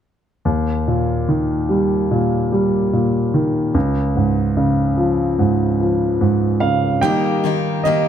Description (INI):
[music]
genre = pop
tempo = 73 BPM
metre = 4/4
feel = straight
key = unclear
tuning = A4 = 440 Hz
[part]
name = warm grand piano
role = accompaniment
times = 0.5-8.1 s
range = Db2 to G5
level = -16 LUFS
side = equal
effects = none
[part]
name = picked steel-string acoustic guitar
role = arpeggios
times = 7.0-8.1 s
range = Eb3 to G4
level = -20 LUFS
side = left 5 dB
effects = none
[sound]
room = light reverb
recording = dark, warm production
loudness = -16 LUFS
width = side -9 dB against mid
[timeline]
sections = 0.5-7.0 A section; 7.0-8.1 B section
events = grand piano solo 7.0-8.1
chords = 0.5 Eb; 3.8 Db; 7.0 Eb